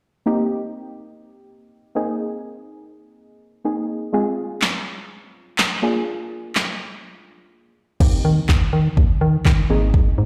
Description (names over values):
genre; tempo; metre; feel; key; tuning
dance-pop; 124 BPM; 4/4; straight; Eb major; A4 = 440 Hz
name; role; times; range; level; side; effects
deep mellow chord stab; accompaniment; 0.3-10.3 s; Ab3 to Ab4; -26 LUFS; equal; chorus, sidechain pumping
deep house drum kit; drums; 4.6-10.1 s; crash cymbal, handclaps, kick drum, snare drum; -21 LUFS; equal; none
organ-like FM bass; bass; 8.0-10.3 s; Ab1 to Eb3; -20 LUFS; equal; sidechain pumping
room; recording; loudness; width
light reverb, digital ambience; played on a big sound system in a bare room, large studio reverb; -20 LUFS; mono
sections
0.3-8.0 A section; 8.0-10.3 B section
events
break 7.0-8.0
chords
0.3 Eb6; 2.0 Abadd9; 4.1 Fm/Ab; 5.8 Bb7; 8.0 Eb6; 9.7 Abadd9